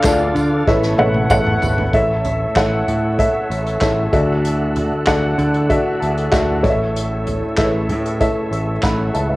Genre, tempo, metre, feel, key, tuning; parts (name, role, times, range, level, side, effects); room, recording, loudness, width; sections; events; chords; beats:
piano-driven pop; 96 BPM; 4/4; straight; A major; A4 = 439 Hz
dark upright piano; accompaniment; 0.0-9.4 s; A2 to B5; -17 LUFS; equal
tonewheel organ; sustained chords; 0.0-9.4 s; D3 to A4; -26 LUFS; right 2 dB; chorus vibrato, lush chorus
picked electric bass; bass; 0.0-9.4 s; G#1 to D3; -21 LUFS; equal
unplugged drum kit; drums; 0.0-9.3 s; handclaps, hi-hat, kick drum, ride cymbal, snare drum, toms; -22 LUFS; equal; cassette tape
tambourine; percussion; 0.0-1.8 s; -33 LUFS; right 4 dB
light reverb, small room ambience; home recording on cassette; -15 LUFS; side -19 dB against mid
0.0-1.9 A section; 1.9-9.4 B section
drum fill 0.7-1.9; upright piano fill 1.0-1.9, 5.7-7.0
0.0 Dm; 0.7 Aadd9; 1.9 A; 4.1 Dadd9; 6.6 A
0.05 0.68 1.31 | 1.93 2.56 3.19 3.82 | 4.44 5.07 5.70 6.33 | 6.95 7.58 8.21 8.84